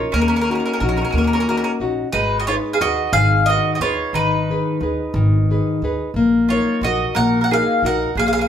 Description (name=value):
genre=italian folk, Italian serenade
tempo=60 BPM (dotted quarters)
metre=6/8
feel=straight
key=Eb minor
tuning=A4 = 440 Hz
part: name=mandolin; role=melody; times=0.0-8.5 s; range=Bb4 to Gb5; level=-21 LUFS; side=left 1 dB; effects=none
part: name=mandolin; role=second line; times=0.0-8.5 s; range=Db4 to Bb4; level=-24 LUFS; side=right 6 dB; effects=none
part: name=nylon-string guitar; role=accompaniment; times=0.0-8.5 s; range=Eb3 to Cb5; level=-20 LUFS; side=left 2 dB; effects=none
part: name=upright bass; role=bass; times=0.1-8.5 s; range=Ab1 to Eb2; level=-22 LUFS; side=right 1 dB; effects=none
room=moderate large studio reverb, RT60 0.9 s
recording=band playing live in one room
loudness=-16 LUFS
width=side -9 dB against mid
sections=0.0-8.5 A section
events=none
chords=0.0 Ebm7; 2.1 Abm; 6.2 Ebm/Bb